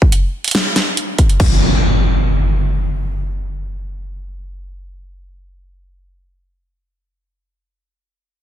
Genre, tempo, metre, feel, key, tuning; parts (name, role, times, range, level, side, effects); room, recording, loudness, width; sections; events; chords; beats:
heavy wobble dubstep; 141 BPM; 4/4; half-time
electronic kick drum; drums; 0.0-1.5 s; -12 LUFS; equal; small room ambience
dubstep drum kit; drums; 0.1-1.5 s; crash cymbal, hi-hat, snare drum; -18 LUFS; equal; small room ambience
impact; sound effects; 1.4-6.1 s; -17 LUFS; equal
light reverb; dense, heavily limited modern master; -14 LUFS; side -11 dB against mid
0.0-1.4 A section; 1.4-4.8 B section
0.12 0.55 0.97 | 1.40 1.82 2.25 2.67 | 3.10 3.53 3.95 4.38